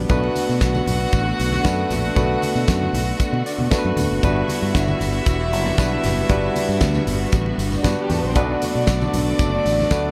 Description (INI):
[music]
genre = disco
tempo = 116 BPM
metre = 4/4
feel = straight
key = unclear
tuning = A4 = 440 Hz
[part]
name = barky tine electric piano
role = accompaniment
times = 0.0-10.1 s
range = G3 to F#5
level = -26 LUFS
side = equal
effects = overdrive
[part]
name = clear symphonic string section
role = sustained chords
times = 0.0-10.1 s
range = D3 to F#4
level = -30 LUFS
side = equal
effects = none
[part]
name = fingered electric bass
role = bass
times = 0.0-10.1 s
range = E1 to B2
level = -25 LUFS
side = equal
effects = none
[part]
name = warm studio violin section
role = second line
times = 0.1-10.1 s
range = G3 to F#5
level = -28 LUFS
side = equal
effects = none
[part]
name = damped 70s drum kit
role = drums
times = 0.1-10.0 s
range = hi-hat, kick drum, snare drum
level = -26 LUFS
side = equal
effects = none
[part]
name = congas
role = percussion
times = 0.1-10.1 s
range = none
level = -33 LUFS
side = equal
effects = none
[part]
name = tambourine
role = percussion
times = 0.1-10.0 s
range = none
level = -40 LUFS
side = equal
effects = none
[sound]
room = light reverb, small room ambience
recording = none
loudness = -20 LUFS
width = mono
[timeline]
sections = 0.0-10.1 A section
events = tine electric piano fill 3.2-4.2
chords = 0.1 Bm7; 4.2 Gmaj7; 8.4 Bm7